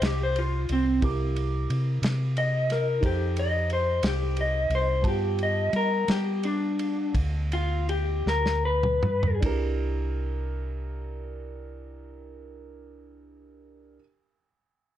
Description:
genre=slow blues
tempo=50-60 BPM (dotted quarters)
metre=12/8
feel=straight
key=C mixolydian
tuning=A4 = 440 Hz
part: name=electric guitar through a small old amp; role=melody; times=0.0-9.4 s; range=C4 to Eb5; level=-26 LUFS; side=left 2 dB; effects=spring reverb
part: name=dark grand piano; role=accompaniment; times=0.0-14.0 s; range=B3 to D6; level=-36 LUFS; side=right 5 dB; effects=none
part: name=hollow-body short-scale fingered electric bass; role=bass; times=0.0-14.0 s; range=C2 to G3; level=-28 LUFS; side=equal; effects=none
part: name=warm soul drum kit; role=drums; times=0.0-9.6 s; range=kick drum, ride cymbal, snare drum, toms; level=-32 LUFS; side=right 1 dB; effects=none
room=little or no reverb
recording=dark, warm production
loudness=-24 LUFS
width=side -11 dB against mid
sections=0.0-9.4 A section; 9.4-14.2 B section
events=clean electric guitar solo 0.0-9.4; slowing down 3.7-9.4; drum fill 8.3-9.4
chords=0.0 F9; 1.0 C9; 3.0 F9; 5.0 G9; 9.4 C9

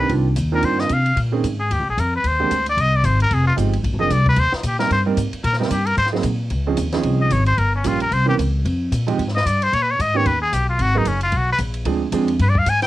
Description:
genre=jazz, small-group swing and bop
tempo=224 BPM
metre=4/4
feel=swing 58% on 8ths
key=unclear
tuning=A4 = 439 Hz
part: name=trumpet with straight mute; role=melody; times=0.0-12.9 s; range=Db4 to Ab5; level=-20 LUFS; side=left 2 dB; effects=cassette tape
part: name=warm concert grand piano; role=accompaniment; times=0.0-12.3 s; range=D3 to Bb4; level=-22 LUFS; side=right 7 dB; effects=cassette tape
part: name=upright bass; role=bass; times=0.0-12.9 s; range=F1 to C3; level=-20 LUFS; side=left 1 dB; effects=none
part: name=compact cocktail drum kit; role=drums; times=0.1-12.9 s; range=hi-hat, kick drum, ride cymbal, snare drum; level=-29 LUFS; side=left 1 dB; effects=none
room=light reverb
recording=home recording on cassette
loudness=-16 LUFS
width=side -15 dB against mid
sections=0.0-6.5 A section; 6.5-12.9 A section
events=muted trumpet solo 0.0-12.9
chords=0.1 Cm11; 1.2 Bbm11; 1.7 Ebsus2; 2.2 Ab(#11); 3.3 Fm9; 3.8 Bb9; 4.4 Eb6; 6.0 Ab9; 6.5 Dbmaj9; 7.6 Gm7b5; 8.1 C7b9; 8.7 Fmadd9; 9.7 Bmaj13; 10.3 Baug; 10.8 Abm9; 11.9 Dm7b5

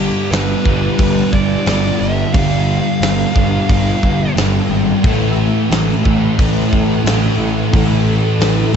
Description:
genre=rock, shoegaze and dream pop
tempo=89 BPM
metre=4/4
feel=straight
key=G mixolydian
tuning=A4 = 437 Hz
part: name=fuzz lead guitar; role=melody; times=0.0-4.3 s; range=G4 to F5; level=-23 LUFS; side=right 3 dB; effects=distortion, tape echo
part: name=thick fuzz guitar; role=riff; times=0.0-8.8 s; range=G2 to A3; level=-15 LUFS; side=left 1 dB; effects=distortion, ensemble chorus
part: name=fuzz picked electric bass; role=bass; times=0.0-8.6 s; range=G1 to A1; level=-19 LUFS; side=equal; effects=overdrive
part: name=big rock drum kit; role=drums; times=0.3-8.6 s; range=hi-hat, kick drum, snare drum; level=-18 LUFS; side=equal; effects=none
room=light reverb, small room ambience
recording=nothing above 7.9 kHz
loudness=-12 LUFS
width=side -7 dB against mid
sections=0.0-8.8 A section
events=none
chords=0.0 G7; 5.0 A5

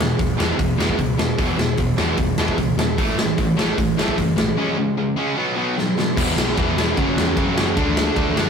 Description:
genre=punk rock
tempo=150 BPM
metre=4/4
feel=straight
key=E major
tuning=A4 = 438 Hz
part: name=distorted electric guitar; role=riff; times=0.0-8.5 s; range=E2 to D4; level=-23 LUFS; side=left 4 dB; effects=overdrive
part: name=distorted electric guitar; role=riff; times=0.0-8.5 s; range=E2 to D4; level=-24 LUFS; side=right 6 dB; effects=overdrive
part: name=overdriven picked electric bass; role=bass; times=0.0-8.5 s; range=E1 to F#2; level=-27 LUFS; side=equal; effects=none
part: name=big rock drum kit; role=drums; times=0.0-8.5 s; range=crash cymbal, hi-hat, kick drum, ride cymbal, snare drum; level=-21 LUFS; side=equal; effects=none
part: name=biting overdriven guitar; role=riff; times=6.2-8.5 s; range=E2 to D4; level=-28 LUFS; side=equal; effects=none
room=light reverb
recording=rough rehearsal-room recording, warm saturation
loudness=-17 LUFS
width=side -6 dB against mid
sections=0.0-6.2 A section; 6.2-8.5 B section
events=drum fill 5.8-6.2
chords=0.0 E5; 3.0 A5; 4.6 C#5; 5.4 B5; 6.2 E5; 7.0 F#5; 7.8 D

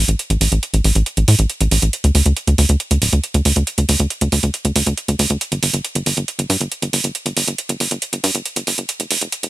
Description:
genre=uplifting trance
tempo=138 BPM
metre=4/4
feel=straight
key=unclear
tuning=A4 = 438 Hz
part: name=tight sequencer bass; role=bass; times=0.0-9.5 s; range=D1 to A2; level=-16 LUFS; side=equal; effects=none
part: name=electronic hi-hat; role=drums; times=0.1-9.5 s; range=none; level=-19 LUFS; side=right 3 dB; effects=overdrive, high-pass filter on hats
room=little or no reverb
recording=high-pass filter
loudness=-15 LUFS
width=side -16 dB against mid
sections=0.0-9.5 A section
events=build-up 0.0-9.5; filter sweep 0.0-9.5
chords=none

